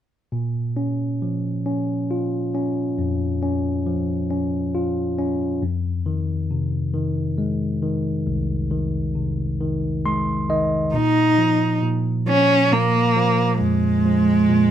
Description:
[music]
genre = acoustic folk-pop ballad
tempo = 45 BPM (dotted quarters)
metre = 6/8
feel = straight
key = Bb minor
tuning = A4 = 444 Hz
[part]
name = overdriven tine electric piano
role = accompaniment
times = 0.3-14.7 s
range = C2 to C6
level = -21 LUFS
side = equal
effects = none
[part]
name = warm cello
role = melody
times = 10.9-14.7 s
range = Ab3 to Eb4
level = -17 LUFS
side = right 1 dB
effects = none
[sound]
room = light reverb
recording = none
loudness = -19 LUFS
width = side -10 dB against mid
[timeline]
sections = 0.3-10.9 A section; 10.9-14.7 B section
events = none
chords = 0.3 Bbm; 5.6 Fm7; 10.9 Bb5

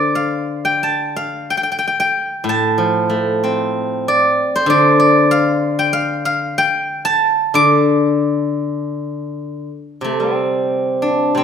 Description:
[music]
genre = chinese traditional, Chinese solo plucked strings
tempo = 80-98 BPM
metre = 4/4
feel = rubato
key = D yu mode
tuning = A4 = 440 Hz
[part]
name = steel-string zither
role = solo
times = 0.0-11.4 s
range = A2 to D6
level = -14 LUFS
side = equal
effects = none
[sound]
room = moderate recital hall reverb, RT60 1.4 s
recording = minimal, uncompressed stereo recording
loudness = -14 LUFS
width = side -7 dB against mid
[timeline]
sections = 0.0-10.0 A section; 10.0-11.4 B section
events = none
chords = none

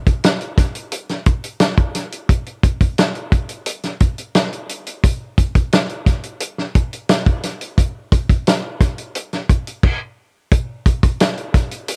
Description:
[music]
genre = funk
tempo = 88 BPM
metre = 4/4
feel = straight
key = none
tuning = none
[part]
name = warm soul drum kit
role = drums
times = 0.1-12.0 s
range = crash cymbal, hi-hat, kick drum, snare drum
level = -18 LUFS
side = equal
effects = none
[sound]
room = light reverb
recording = dark, warm production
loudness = -18 LUFS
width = mono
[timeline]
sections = 0.0-10.5 A section; 10.5-12.0 B section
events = none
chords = none

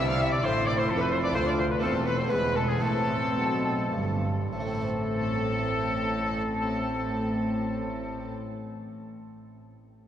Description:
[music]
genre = classical, baroque-style concerto movement with solo episodes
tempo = 96-131 BPM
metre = 3/4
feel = straight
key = A minor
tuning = A4 = 440 Hz
[part]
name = clear oboe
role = melody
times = 0.0-8.3 s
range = G#4 to F5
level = -32 LUFS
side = left 1 dB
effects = none
[part]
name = rich chamber violin section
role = melody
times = 0.0-8.3 s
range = G#5 to F6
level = -38 LUFS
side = left 3 dB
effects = none
[part]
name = rich chamber violin section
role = second line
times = 0.0-8.3 s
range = G#4 to F5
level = -34 LUFS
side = left 1 dB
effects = none
[part]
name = dark chamber viola section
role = accompaniment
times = 0.0-8.3 s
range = G#3 to F4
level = -34 LUFS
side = equal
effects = none
[part]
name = harpsichord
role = accompaniment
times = 0.0-8.6 s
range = D2 to C5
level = -36 LUFS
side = equal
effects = none
[part]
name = rich chamber double bass section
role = bass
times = 0.0-8.3 s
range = E1 to D2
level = -33 LUFS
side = right 1 dB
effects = none
[part]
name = warm chamber cello section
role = bass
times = 0.0-8.3 s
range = D2 to C3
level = -32 LUFS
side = equal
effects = none
[sound]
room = wet cathedral reverb, RT60 4.5 s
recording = worn, warbling old tape, cassette tape, warbly pitch drift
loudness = -25 LUFS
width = side -10 dB against mid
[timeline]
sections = 0.0-4.5 A section; 4.5-8.3 B section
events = slowing down 0.7-4.5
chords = 0.0 C; 1.4 Dm; 1.8 Am/E; 2.3 E; 2.8 Am

